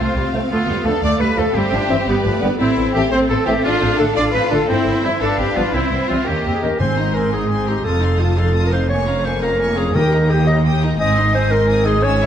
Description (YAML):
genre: cinematic, heroic adventure film score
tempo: 115 BPM (dotted quarters)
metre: 6/8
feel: straight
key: C major, Ab major from 6.8 s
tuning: A4 = 442 Hz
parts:
  - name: rich symphonic violin section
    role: melody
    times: 0.0-12.3 s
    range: C5 to Fb6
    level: -30 LUFS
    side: left 4 dB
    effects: none
  - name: clear oboe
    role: second line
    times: 0.0-6.8 s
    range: C4 to D5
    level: -25 LUFS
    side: right 1 dB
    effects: none
  - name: warm symphonic violin section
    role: second line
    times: 0.0-12.3 s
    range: C4 to C6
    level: -24 LUFS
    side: left 3 dB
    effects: none
  - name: rich studio viola section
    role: accompaniment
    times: 0.0-12.3 s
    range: F3 to C5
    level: -24 LUFS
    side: right 1 dB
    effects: none
  - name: clear symphonic cello section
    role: bass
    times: 0.0-12.3 s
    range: Eb2 to F4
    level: -22 LUFS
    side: right 1 dB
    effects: none
  - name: rich symphonic double bass section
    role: bass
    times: 0.0-12.3 s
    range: F1 to Eb2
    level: -21 LUFS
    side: right 2 dB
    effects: none
  - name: mellow hollow large flute ensemble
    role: second line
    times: 0.3-6.7 s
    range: D5 to F5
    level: -30 LUFS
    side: equal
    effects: none
  - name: warm clarinet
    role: second line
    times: 0.3-12.3 s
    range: A3 to Eb5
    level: -22 LUFS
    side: left 1 dB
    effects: none
  - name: dark French horn section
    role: sustained chords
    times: 0.3-6.7 s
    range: C4 to C5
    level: -29 LUFS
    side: left 3 dB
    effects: none
  - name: warm trombone section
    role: sustained chords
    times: 0.3-6.7 s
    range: C3 to Bb3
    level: -28 LUFS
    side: right 2 dB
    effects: none
  - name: timpani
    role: percussion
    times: 6.8-7.3, 10.0-10.4 s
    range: Ab2 to Eb3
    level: -22 LUFS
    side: left 1 dB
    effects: none
room: wet scoring stage reverb, RT60 2.0 s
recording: dark, warm production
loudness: -15 LUFS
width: side -9 dB against mid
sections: 0.0-6.8 A section; 6.8-12.3 B section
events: none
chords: 0.0 F; 0.5 Dm; 1.6 C/G; 2.1 G; 2.6 Am; 3.6 Dm/A; 4.7 C; 5.2 G7; 5.7 C; 6.3 Eb7; 6.8 Abadd9; 7.9 F7; 8.9 Bbm7/F; 10.0 Eb; 11.0 Ab